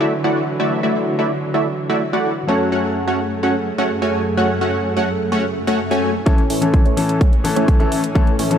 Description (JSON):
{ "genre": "EDM, festival progressive house", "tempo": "127 BPM", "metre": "4/4", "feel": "straight", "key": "A major", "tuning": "A4 = 439 Hz", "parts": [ { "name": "clear concert grand piano", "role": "accompaniment", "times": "0.0-8.6 s", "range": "E3 to A4", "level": "-24 LUFS", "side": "left 3 dB", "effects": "sidechain pumping, digital delay" }, { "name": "warm studio string section", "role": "sustained chords", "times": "0.0-8.6 s", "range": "F#2 to C#4", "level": "-23 LUFS", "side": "right 1 dB", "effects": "stereo widening, sidechain pumping" }, { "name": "supersaw stab", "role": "riff", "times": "0.0-8.6 s", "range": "E3 to G#5", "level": "-19 LUFS", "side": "right 1 dB", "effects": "wide subtle chorus, sidechain pumping, low-pass filter, digital delay" }, { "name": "swell and riser", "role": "sound effects", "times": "5.5-8.6 s", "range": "none", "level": "-28 LUFS", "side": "left 4 dB", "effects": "none" }, { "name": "electronic hi-hat", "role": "drums", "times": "6.3-8.6 s", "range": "none", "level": "-29 LUFS", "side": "right 3 dB", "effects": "overdrive" }, { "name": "electronic kick drum", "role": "drums", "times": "6.3-8.2 s", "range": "none", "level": "-14 LUFS", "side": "equal", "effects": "overdrive" } ], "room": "light reverb", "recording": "none", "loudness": "-16 LUFS", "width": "side -8 dB against mid", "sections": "0.0-6.3 A section; 6.3-8.6 B section", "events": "filter sweep on string section 0.0-6.3; swell 5.5-6.3; build-up 6.3-8.6; filter sweep on supersaw synth 6.3-8.6", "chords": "0.0 Dadd9; 2.5 F#m; 6.3 A", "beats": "0.12 | 0.60 1.07 1.54 2.01 | 2.49 2.96 3.43 3.90 | 4.38 4.85 5.32 5.79 | 6.26 6.74 7.21 7.68 | 8.15" }